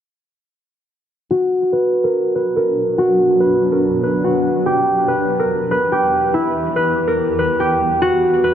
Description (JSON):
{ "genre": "hip hop", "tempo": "143 BPM", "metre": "4/4", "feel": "half-time", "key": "B harmonic minor", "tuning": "A4 = 437 Hz", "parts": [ { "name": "concert harp", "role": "melody", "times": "1.3-8.5 s", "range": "E4 to B4", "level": "-15 LUFS", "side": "equal", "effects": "low-pass filter, tape echo" }, { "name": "granular cloud pad", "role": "sustained chords", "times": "2.2-8.5 s", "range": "E2 to B4", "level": "-22 LUFS", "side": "equal", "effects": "built-in reverb, low-pass filter" } ], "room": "light reverb, small room ambience", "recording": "echo-heavy mix", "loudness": "-14 LUFS", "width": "side -9 dB against mid", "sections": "1.3-8.5 A section", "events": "filter sweep 1.3-8.5", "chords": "1.3 Bm; 4.7 Em; 8.0 Bm", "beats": "| 1.31 1.73 2.15 2.56 | 2.98 3.40 3.82 4.24 | 4.66 5.08 5.50 5.92 | 6.34 6.76 7.18 7.60 | 8.02 8.44" }